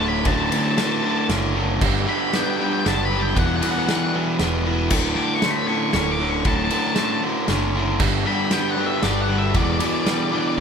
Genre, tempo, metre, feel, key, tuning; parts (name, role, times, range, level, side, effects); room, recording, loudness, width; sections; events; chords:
post-rock; 116 BPM; 3/4; straight; D major; A4 = 441 Hz
octave-fuzz lead guitar; melody; 0.0-10.6 s; D5 to D6; -25 LUFS; left 3 dB; distortion
dark analog pad; sustained chords; 0.0-10.6 s; D3 to A4; -33 LUFS; equal
twangy electric guitar; arpeggios; 0.0-10.6 s; D2 to D4; -29 LUFS; left 3 dB
biting overdriven guitar; riff; 0.0-10.6 s; D2 to G3; -23 LUFS; right 1 dB
picked electric bass; bass; 0.0-10.6 s; D1 to G1; -26 LUFS; equal
loose indie drum kit; drums; 0.2-10.6 s; crash cymbal, kick drum, ride cymbal, snare drum; -25 LUFS; equal
moderate recital hall reverb, RT60 1.5 s; recorded in a church or concert hall; -18 LUFS; side -6 dB against mid
0.0-10.6 A section
0.0 Dmaj7; 1.8 Gmaj9; 3.4 Em11; 4.9 Dmaj7; 8.0 Gmaj9; 9.5 Em11